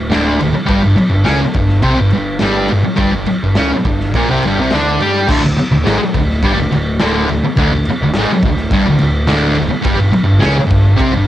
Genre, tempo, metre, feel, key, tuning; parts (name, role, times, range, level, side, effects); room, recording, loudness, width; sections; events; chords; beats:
garage rock duo or trio; 105 BPM; 4/4; straight; A4 = 440 Hz
thick fuzz guitar; riff; 0.0-11.3 s; D2 to G4; -12 LUFS; equal; distortion, cassette tape
growling picked electric bass; bass; 0.0-11.3 s; D1 to G2; -21 LUFS; equal; overdrive
raw garage drum kit; drums; 0.1-11.1 s; crash cymbal, kick drum, snare drum; -18 LUFS; equal; cassette tape
light reverb; home recording on cassette; -11 LUFS; side -13 dB against mid
0.0-5.3 A section; 5.3-11.3 A section
0.0 N.C.; 0.7 G5; 5.3 Dsus4; 9.9 G5
0.13 | 0.70 1.28 1.85 2.42 | 3.00 3.57 4.15 4.72 | 5.29 5.87 6.44 7.01 | 7.58 8.15 8.72 9.30 | 9.87 10.44 11.01